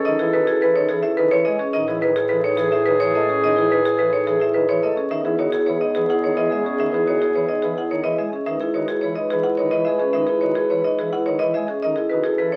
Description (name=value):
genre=classical, minimalist pattern music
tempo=107 BPM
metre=3/4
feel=straight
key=E major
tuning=A4 = 442 Hz
part: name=marimba with hard mallets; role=melody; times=0.0-12.6 s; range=G#4 to F#5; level=-23 LUFS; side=equal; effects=none
part: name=warm clarinet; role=second line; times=0.0-12.6 s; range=G#4 to B4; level=-26 LUFS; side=equal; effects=none
part: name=vibraphone with soft mallets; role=arpeggios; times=0.0-12.6 s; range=C#4 to B4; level=-29 LUFS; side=equal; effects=none
part: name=warm bass clarinet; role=bass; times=0.0-12.6 s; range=C#2 to A2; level=-34 LUFS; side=equal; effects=none
part: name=pipe organ, sparkling flutes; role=accompaniment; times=0.1-12.5 s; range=D#3 to A3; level=-31 LUFS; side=equal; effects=none
room=moderate large studio reverb, RT60 0.9 s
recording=very old 78 rpm record, vinyl crackle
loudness=-20 LUFS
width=mono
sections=0.0-12.6 A section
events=none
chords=0.0 F#m11; 1.7 Amaj9; 5.1 E6; 8.5 C#m9; 11.8 F#m11